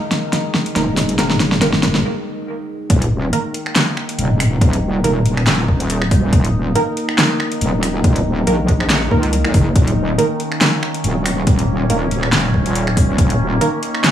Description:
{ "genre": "deep dubstep", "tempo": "140 BPM", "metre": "4/4", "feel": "swing 55% on 16ths, half-time", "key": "unclear", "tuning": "A4 = 439 Hz", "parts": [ { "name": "overtone-sweeping drone", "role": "sustained chords", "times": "0.0-14.1 s", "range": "Eb3 to Eb4", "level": "-22 LUFS", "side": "equal", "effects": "chorus, built-in reverb" }, { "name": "deep house drum kit", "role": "drums", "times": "0.1-14.1 s", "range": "finger snaps, handclaps, hi-hat, snare drum", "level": "-18 LUFS", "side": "equal", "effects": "overdrive, studio reverb" }, { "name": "filtered dub chord stab", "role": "stabs", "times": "0.8-13.7 s", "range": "Eb3 to Bb4", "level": "-23 LUFS", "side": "right 3 dB", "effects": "wide subtle chorus, dub echo" }, { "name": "wobble bass", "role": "bass", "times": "0.8-13.6 s", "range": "Eb1 to Db2", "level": "-17 LUFS", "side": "equal", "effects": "chorus" }, { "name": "electronic kick drum", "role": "drums", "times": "2.9-13.3 s", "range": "none", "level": "-15 LUFS", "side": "equal", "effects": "overdrive, studio reverb" } ], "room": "light reverb, digital ambience", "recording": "small room ambience", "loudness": "-14 LUFS", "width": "side -10 dB against mid", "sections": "0.0-2.9 A section; 2.9-14.1 B section", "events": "build-up 0.0-2.9; drum fill 0.0-2.0; break 2.0-2.9; drop 2.9-14.1", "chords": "0.0 Eb5" }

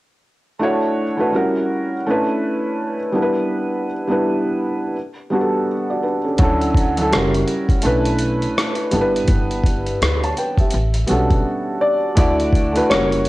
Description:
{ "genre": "lo-fi hip hop", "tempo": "83 BPM", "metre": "4/4", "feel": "swing 61% on 16ths", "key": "unclear", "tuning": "A4 = 439 Hz", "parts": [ { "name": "felt-muted upright piano", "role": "accompaniment", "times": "0.6-13.3 s", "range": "F#3 to A5", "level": "-18 LUFS", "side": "equal", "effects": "cassette tape, plate reverb" }, { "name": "upright bass", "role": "bass", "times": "6.4-13.3 s", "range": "F#1 to D2", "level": "-22 LUFS", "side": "equal", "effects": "none" }, { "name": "boom bap sampler-style drum kit", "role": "drums", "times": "6.4-13.3 s", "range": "hi-hat, kick drum, rim click", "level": "-19 LUFS", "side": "equal", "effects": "none" }, { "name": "warm upright piano", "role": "melody", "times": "11.8-13.3 s", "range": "C#5 to D5", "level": "-20 LUFS", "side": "left 2 dB", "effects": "cassette tape, tape echo" } ], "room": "light reverb", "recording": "home recording on cassette", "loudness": "-16 LUFS", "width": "side -18 dB against mid", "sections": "0.6-12.2 A section; 12.2-13.3 B section", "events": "break 11.4-12.2", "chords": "0.6 Dmaj9; 1.3 F#7b9; 2.0 Bm11; 3.1 G6; 4.9 A13sus4; 6.4 Dmaj9; 7.1 F#7b9; 7.8 Bm11; 8.9 G6; 10.7 A13sus4; 12.2 Dadd9" }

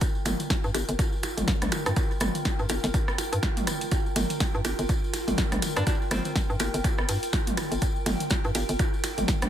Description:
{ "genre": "minimal techno", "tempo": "123 BPM", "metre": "4/4", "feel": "swing 58% on 16ths", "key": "G minor", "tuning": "A4 = 440 Hz", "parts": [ { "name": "electronic kick drum", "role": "drums", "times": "0.0-9.4 s", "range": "none", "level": "-28 LUFS", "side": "equal", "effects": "overdrive" }, { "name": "punchy analog drum machine", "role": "drums", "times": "0.0-9.5 s", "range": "hi-hat, ride cymbal, snare drum", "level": "-32 LUFS", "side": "equal", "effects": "overdrive" }, { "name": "minimal click drum kit", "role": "percussion", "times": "0.0-9.5 s", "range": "percussion blips, rim click, toms", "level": "-31 LUFS", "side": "right 2 dB", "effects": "tape echo" }, { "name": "tambourine", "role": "percussion", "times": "0.0-9.5 s", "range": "none", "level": "-39 LUFS", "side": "left 4 dB", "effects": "none" }, { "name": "warbly tape-like pad", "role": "texture", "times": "0.0-9.5 s", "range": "F4 to G5", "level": "-35 LUFS", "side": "equal", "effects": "chorus, built-in reverb, phaser, sidechain pumping" }, { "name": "hollow knocking FM bass", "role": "bass", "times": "0.3-9.5 s", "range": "G1 to G2", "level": "-29 LUFS", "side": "equal", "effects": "sidechain pumping" }, { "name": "filtered dub chord stab", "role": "stabs", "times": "0.7-8.7 s", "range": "Bb3 to G4", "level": "-38 LUFS", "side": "left 3 dB", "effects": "none" }, { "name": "breathy alto saxophone", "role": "melody", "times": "5.8-6.3 s", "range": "C4 to D4", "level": "-37 LUFS", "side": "equal", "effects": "tape echo" } ], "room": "little or no reverb", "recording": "none", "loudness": "-24 LUFS", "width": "side -10 dB against mid", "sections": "0.0-9.5 A section", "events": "none", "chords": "0.0 Gm7" }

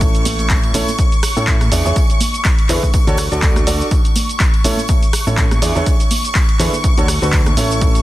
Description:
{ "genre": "piano house", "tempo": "123 BPM", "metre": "4/4", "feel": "swing 56% on 16ths", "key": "A major", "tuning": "A4 = 444 Hz", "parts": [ { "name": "string machine, violins", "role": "sustained chords", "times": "0.0-8.0 s", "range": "C#6", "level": "-24 LUFS", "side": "left 1 dB", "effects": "ensemble chorus, sidechain pumping" }, { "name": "clear upright piano", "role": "riff", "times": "0.0-8.0 s", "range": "A2 to D5", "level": "-21 LUFS", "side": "right 1 dB", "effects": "sidechain pumping, dub echo" }, { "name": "fat analog bass", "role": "bass", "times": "0.0-8.0 s", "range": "A1 to A2", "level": "-19 LUFS", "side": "equal", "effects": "sidechain pumping" }, { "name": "electronic kick drum", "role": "drums", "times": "0.0-7.9 s", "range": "none", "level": "-15 LUFS", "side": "equal", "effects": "none" }, { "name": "punchy analog drum machine", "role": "drums", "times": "0.0-8.0 s", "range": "handclaps, hi-hat, rim click, shaker", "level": "-21 LUFS", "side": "right 1 dB", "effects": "none" }, { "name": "tambourine and congas", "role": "percussion", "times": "0.0-8.0 s", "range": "none", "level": "-29 LUFS", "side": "right 2 dB", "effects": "none" } ], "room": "little or no reverb", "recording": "dense, heavily limited modern master", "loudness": "-12 LUFS", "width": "side -16 dB against mid", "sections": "0.0-8.0 A section", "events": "none", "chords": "0.0 A; 1.7 E7; 2.9 Dmaj7; 3.9 A; 5.6 E7; 6.8 Dmaj7" }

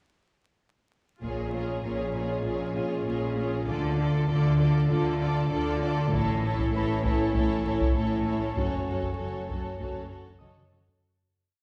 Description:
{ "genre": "cinematic, suspense film score", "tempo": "98 BPM", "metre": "4/4", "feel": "straight", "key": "unclear", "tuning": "A4 = 440 Hz", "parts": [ { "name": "warm symphonic violin section", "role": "melody", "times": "1.2-11.0 s", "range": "Db5 to D5", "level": "-40 LUFS", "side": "equal", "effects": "none" }, { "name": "warm symphonic violin section", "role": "second line", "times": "1.2-11.0 s", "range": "Ab4 to A4", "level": "-39 LUFS", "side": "equal", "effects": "none" }, { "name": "rich symphonic viola section", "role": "accompaniment", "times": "1.2-11.0 s", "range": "E4 to Gb4", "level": "-36 LUFS", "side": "equal", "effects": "none" }, { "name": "mellow French horn section", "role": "sustained chords", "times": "1.2-10.7 s", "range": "Ab3 to F4", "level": "-38 LUFS", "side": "equal", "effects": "none" }, { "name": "rich symphonic cello section", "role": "riff", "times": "1.2-10.9 s", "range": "Gb2 to D4", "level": "-38 LUFS", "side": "equal", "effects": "none" }, { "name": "rich symphonic cello section", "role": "bass", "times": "1.2-11.0 s", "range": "Gb2 to D3", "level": "-32 LUFS", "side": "equal", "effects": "none" }, { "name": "rich symphonic double bass section", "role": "bass", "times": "1.2-11.0 s", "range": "Gb1 to D2", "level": "-36 LUFS", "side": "equal", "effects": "none" }, { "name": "taiko ensemble", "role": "drums", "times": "1.2-2.4, 6.1-11.2 s", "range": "none", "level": "-34 LUFS", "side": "equal", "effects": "none" }, { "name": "concert harp", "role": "texture", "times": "1.8-11.0 s", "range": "Bb4 to Eb7", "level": "-46 LUFS", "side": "equal", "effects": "none" } ], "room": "wet scoring stage reverb, RT60 1.7 s", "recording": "heard from further back in the room, vinyl crackle", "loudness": "-27 LUFS", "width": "mono", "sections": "1.2-11.0 A section", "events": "fade-out 8.6-11.0; drum fill 10.4-11.0", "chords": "1.2 Bbm7; 3.7 Dm; 6.1 A; 8.6 Gbm" }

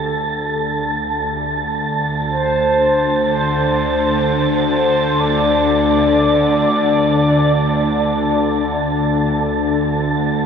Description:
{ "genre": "dark ambient drone", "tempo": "free time", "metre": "none", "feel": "none", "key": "unclear", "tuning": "A4 = 440 Hz", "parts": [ { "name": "mellow horn-like synth lead", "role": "melody", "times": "0.0-10.0 s", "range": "A4 to D5", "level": "-19 LUFS", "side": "equal", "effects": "lush chorus, diffuse ambient delay" }, { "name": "bowed-like drone", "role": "drone", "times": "0.0-10.5 s", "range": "D2 to D3", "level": "-18 LUFS", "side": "left 1 dB", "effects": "built-in reverb" }, { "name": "wind-like tuned noise texture", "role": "texture", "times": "0.0-10.5 s", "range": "A5", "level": "-22 LUFS", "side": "right 3 dB", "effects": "built-in reverb" } ], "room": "wet huge ambient reverb, RT60 9.2 s", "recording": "none", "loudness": "-14 LUFS", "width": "side -7 dB against mid", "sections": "0.0-10.5 A section", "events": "fade-in on synth drone 0.0-10.5", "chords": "0.0 D5" }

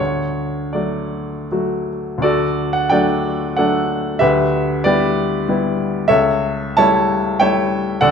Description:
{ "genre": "classical, romantic character piece for solo piano", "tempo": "93 BPM", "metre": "3/4", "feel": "uneven beats, rubato", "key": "D major", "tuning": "A4 = 440 Hz", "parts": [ { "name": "clear baby grand piano", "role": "solo", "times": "0.0-8.1 s", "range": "C#2 to A5", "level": "-15 LUFS", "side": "equal", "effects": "none" } ], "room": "moderate recital hall reverb, RT60 1.6 s", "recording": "none", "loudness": "-15 LUFS", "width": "side -6 dB against mid", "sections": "0.0-2.2 A section; 2.2-8.1 A section", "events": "none", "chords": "0.0 D; 4.2 Em7/D; 6.1 A7/C#" }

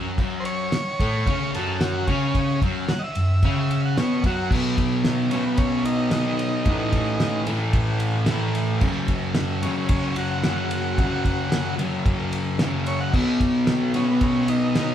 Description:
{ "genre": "garage rock duo or trio", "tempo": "111 BPM", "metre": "4/4", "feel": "straight", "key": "unclear", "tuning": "A4 = 440 Hz", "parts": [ { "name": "fuzz guitar", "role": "riff", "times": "0.0-14.9 s", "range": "F#2 to C#4", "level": "-22 LUFS", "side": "equal", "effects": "distortion" }, { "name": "cloth-damped thuddy drum kit", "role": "drums", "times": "0.2-14.9 s", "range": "crash cymbal, kick drum, ride cymbal, snare drum", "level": "-25 LUFS", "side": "equal", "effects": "none" }, { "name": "overdriven combo organ", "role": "melody", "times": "0.4-14.9 s", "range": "B3 to F#5", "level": "-29 LUFS", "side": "right 1 dB", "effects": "none" } ], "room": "moderate large studio reverb, RT60 1.3 s", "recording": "band playing live in one room", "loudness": "-20 LUFS", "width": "side -10 dB against mid", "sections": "0.0-4.5 A section; 4.5-14.9 B section", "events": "none", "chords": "0.0 F#5; 4.5 B; 6.7 A5; 8.8 F#5; 13.1 B" }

